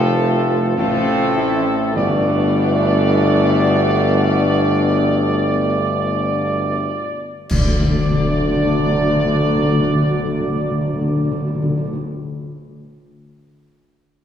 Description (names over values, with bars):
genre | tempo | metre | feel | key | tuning
classical, ceremonial fanfare | 36-55 BPM | 4/4 | straight | D major | A4 = 440 Hz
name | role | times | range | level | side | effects
mellow trumpet section | melody | 0.0-12.0 s | A4 to D5 | -23 LUFS | right 1 dB | none
bright trombone section | sustained chords | 0.0-12.0 s | A2 to A3 | -25 LUFS | right 1 dB | none
dark French horn section | sustained chords | 0.0-12.0 s | A3 to F4 | -22 LUFS | left 3 dB | none
warm tuba | bass | 0.0-12.0 s | F1 to D2 | -19 LUFS | right 1 dB | none
clash cymbals and concert bass drum | percussion | 7.5-10.7 s | none | -22 LUFS | equal | none
timpani | percussion | 7.5-12.0 s | D3 | -20 LUFS | left 2 dB | none
room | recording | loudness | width
wet recital hall reverb, RT60 1.9 s | heard from further back in the room | -15 LUFS | side -9 dB against mid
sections
0.0-7.5 A section; 7.5-13.9 B section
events
slowing down 0.0-7.5; band accent 7.5-9.1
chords
0.0 F; 2.0 Gadd9; 7.5 D